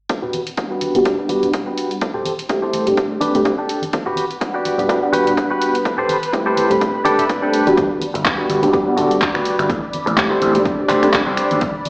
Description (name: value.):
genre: filtered disco house.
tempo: 125 BPM.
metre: 4/4.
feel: swing 56% on 16ths.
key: G major.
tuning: A4 = 439 Hz.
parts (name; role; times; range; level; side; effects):
electronic kick drum; drums; 0.1-11.7 s; none; -21 LUFS; equal; high-pass filter on kick.
punchy analog drum machine; drums; 0.1-11.9 s; finger snaps, handclaps, hi-hat; -24 LUFS; equal; sidechain pumping on hats.
maracas and congas; percussion; 0.1-11.9 s; none; -32 LUFS; equal; sidechain pumping on perc, low-pass filter on perc.
direct-recorded clean electric guitar; riff; 0.2-11.6 s; D4 to G5; -19 LUFS; equal; sidechain pumping, low-pass filter.
reed electric piano; accompaniment; 0.6-11.2 s; G3 to F#5; -18 LUFS; equal; overdrive, fast tremolo, phaser, sidechain pumping, low-pass filter.
string machine, full ensemble; sustained chords; 4.2-11.9 s; B4 to B5; -24 LUFS; equal; ensemble chorus, vintage 12-bit sampler grit, sidechain pumping, low-pass filter.
gritty slap bass; bass; 7.8-11.7 s; G1 to D2; -23 LUFS; equal; overdrive, tube saturation, sidechain pumping, low-pass filter.
room: moderate echo chamber reverb, RT60 1.4 s.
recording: played on a big sound system in a bare room, stone room reverb, AM radio sound.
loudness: -15 LUFS.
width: side -29 dB against mid.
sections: 0.1-7.8 A section; 7.8-11.9 B section.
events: filter sweep 0.1-7.8, 7.8-11.9; clean electric guitar fill 6.8-7.8.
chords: 0.1 Gmaj7; 2.0 Am7; 3.0 D7sus4; 3.9 Gmaj7; 5.9 Am7; 6.8 D7sus4; 7.8 Gmaj7; 9.7 Am7; 10.7 D7sus4.